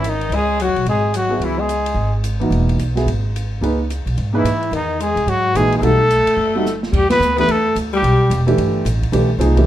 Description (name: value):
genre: modal jazz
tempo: 218 BPM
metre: 4/4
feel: swing 61% on 8ths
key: C# minor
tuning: A4 = 440 Hz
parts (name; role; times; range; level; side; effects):
- warm trumpet; melody; 0.0-2.1, 4.4-8.4 s; D#4 to B4; -18 LUFS; equal; none
- growling alto saxophone; second line; 0.0-2.1, 4.4-8.4 s; D#3 to B3; -22 LUFS; left 4 dB; none
- upright bass; bass; 0.0-9.7 s; E1 to G#2; -19 LUFS; equal; none
- open jazz drum kit; drums; 0.0-9.6 s; crash cymbal, hi-hat, kick drum, ride cymbal, snare drum; -29 LUFS; equal; none
- warm baby grand piano; accompaniment; 1.3-9.7 s; E3 to B4; -19 LUFS; right 2 dB; none
room: light reverb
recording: minimal, uncompressed stereo recording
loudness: -15 LUFS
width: side -12 dB against mid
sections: 0.0-6.9 A section; 6.9-9.7 B section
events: drum fill 6.7; band accent 7.1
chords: 0.0 C#m11; 5.8 B7b13; 6.9 Em11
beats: 0.04 | 0.31 0.59 0.86 1.14 | 1.42 1.69 1.97 2.24 | 2.52 2.79 3.07 3.35 | 3.62 3.90 4.17 4.45 | 4.72 5.00 5.28 5.55 | 5.83 6.10 6.38 6.65 | 6.93 7.20 7.48 7.75 | 8.03 8.30 8.58 8.85 | 9.13 9.40